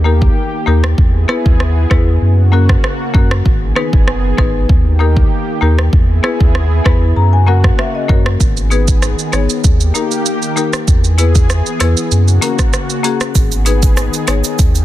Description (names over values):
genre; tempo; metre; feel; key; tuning
dancehall; 97 BPM; 4/4; straight; G# minor; A4 = 440 Hz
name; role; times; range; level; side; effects
marimba with medium mallets; accompaniment; 0.0-14.4 s; A#3 to B5; -19 LUFS; left 6 dB; none
lush unison pad; sustained chords; 0.0-14.8 s; C#3 to G#4; -22 LUFS; right 1 dB; chorus, sidechain pumping
warm sub bass; bass; 0.0-14.8 s; F#1 to F#2; -12 LUFS; equal; none
afro-pop drum kit; drums; 0.2-14.8 s; hi-hat, kick drum, rim click, shaker; -13 LUFS; equal; soft clipping on snare
egg shaker; percussion; 13.3-14.8 s; none; -27 LUFS; right 12 dB; none
room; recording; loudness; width
little or no reverb; dense, heavily limited modern master; -10 LUFS; side -14 dB against mid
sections
0.0-8.4 A section; 8.4-14.8 B section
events
marimba fill 6.5-8.4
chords
0.0 D#; 1.0 E; 2.2 F#; 3.5 G#m; 4.7 D#; 5.9 E; 7.2 F#; 8.4 G#m; 9.6 D#; 10.9 E; 12.1 F#; 13.4 G#m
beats
0.36 | 0.98 1.60 2.22 2.84 | 3.46 4.07 4.69 5.31 | 5.93 6.55 7.17 7.79 | 8.40 9.02 9.64 10.26 | 10.88 11.50 12.11 12.73 | 13.35 13.97 14.59